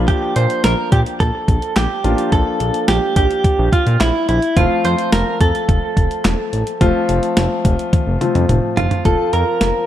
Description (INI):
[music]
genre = synth-pop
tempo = 107 BPM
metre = 4/4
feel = straight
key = unclear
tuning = A4 = 440 Hz
[part]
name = warm concert grand piano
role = accompaniment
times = 0.0-9.9 s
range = F3 to F4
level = -21 LUFS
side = left 3 dB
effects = none
[part]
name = smooth synth bass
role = bass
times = 0.0-9.7 s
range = E1 to Bb2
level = -18 LUFS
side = equal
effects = none
[part]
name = direct-recorded clean electric guitar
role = melody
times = 0.1-9.9 s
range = E4 to C5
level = -19 LUFS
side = right 2 dB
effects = lush chorus, slapback echo
[part]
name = clean 12-bit digital drum machine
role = drums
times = 0.1-9.7 s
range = handclaps, hi-hat, kick drum, snare drum, toms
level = -18 LUFS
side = equal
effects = none
[sound]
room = light reverb, digital ambience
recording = dark, warm production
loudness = -14 LUFS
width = side -11 dB against mid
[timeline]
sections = 0.0-9.1 A section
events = drum fill 7.9-9.1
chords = 0.0 Bb; 4.6 F